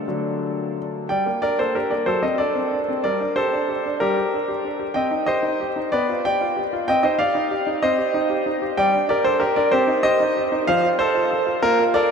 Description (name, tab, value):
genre	classical-period piano sonatina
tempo	63 BPM (dotted quarters)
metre	6/8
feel	rubato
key	G minor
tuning	A4 = 440 Hz
part	bright grand piano	solo	0.0-12.1 s	D3 to G5	-18 LUFS	equal	none
room	wet huge ambient reverb, RT60 8.4 s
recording	in a vast, echoing space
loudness	-18 LUFS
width	side -6 dB against mid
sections	0.0-1.1 A section; 1.1-12.1 B section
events	none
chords	0.1 D; 1.1 Gm; 2.1 D7/F#; 3.0 Gm; 5.0 Cm; 5.9 G7/B; 6.9 Cm; 8.8 Gm; 9.7 Cm; 10.7 F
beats	0.07 | 1.10 2.08 | 3.05 4.00 | 4.95 5.92 | 6.87 7.82 | 8.77 9.72 | 10.68 11.64